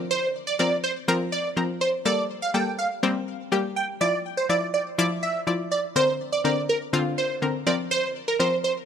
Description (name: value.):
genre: pop.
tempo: 123 BPM.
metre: 4/4.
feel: straight.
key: unclear.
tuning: A4 = 440 Hz.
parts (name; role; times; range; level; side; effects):
analog pluck; accompaniment; 0.0-8.6 s; D3 to D5; -26 LUFS; left 3 dB; chorus.
plucky unison lead; melody; 0.1-8.7 s; Bb4 to G5; -25 LUFS; right 2 dB; ping-pong delay.
room: moderate plate reverb, RT60 3.4 s.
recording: lossy compression artefacts.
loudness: -22 LUFS.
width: side -8 dB against mid.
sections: 0.0-8.9 A section.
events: none.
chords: 0.0 C7sus4; 2.1 Gmadd9; 4.0 Dmadd9; 6.0 Bbadd9; 7.7 C7sus4.